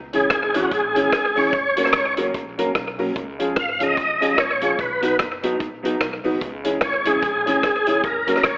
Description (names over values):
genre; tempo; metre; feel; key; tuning
ska; 147 BPM; 4/4; swing 59% on 8ths; unclear; A4 = 442 Hz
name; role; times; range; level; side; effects
upright bass; bass; 0.0-8.6 s; E1 to C#2; -37 LUFS; equal; none
mellow electric guitar; accompaniment; 0.1-8.4 s; E3 to D#4; -27 LUFS; right 1 dB; lush chorus, slapback echo
dark upright piano; stabs; 0.1-8.4 s; B3 to A#4; -25 LUFS; left 1 dB; none
vintage drum kit; drums; 0.1-8.6 s; hi-hat, kick drum, rim click; -24 LUFS; equal; slapback echo
overdriven tonewheel organ; melody; 0.2-8.6 s; F#4 to E#5; -19 LUFS; equal; chorus vibrato, fast rotary speaker, slapback echo
room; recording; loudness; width
moderate echo chamber reverb, RT60 1.7 s, small room reverb; telephone sound; -18 LUFS; side -23 dB against mid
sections
0.0-8.6 A section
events
none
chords
0.0 C#m; 1.5 F#; 3.2 C#; 4.8 B; 6.4 C#m; 8.0 F#